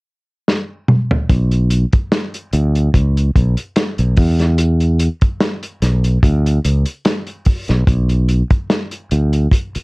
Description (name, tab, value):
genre	lush 1970s-style soul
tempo	73 BPM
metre	4/4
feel	swing 54% on 16ths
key	unclear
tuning	A4 = 440 Hz
part	warm soul drum kit	drums	0.5-9.8 s	hi-hat, kick drum, snare drum, toms	-15 LUFS	equal	none
part	fingered electric bass	bass	1.3-9.8 s	B1 to E2	-14 LUFS	equal	none
room	light reverb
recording	cassette tape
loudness	-14 LUFS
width	side -28 dB against mid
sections	0.0-1.3 A section; 1.3-9.8 B section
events	drum fill 0.5-1.3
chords	none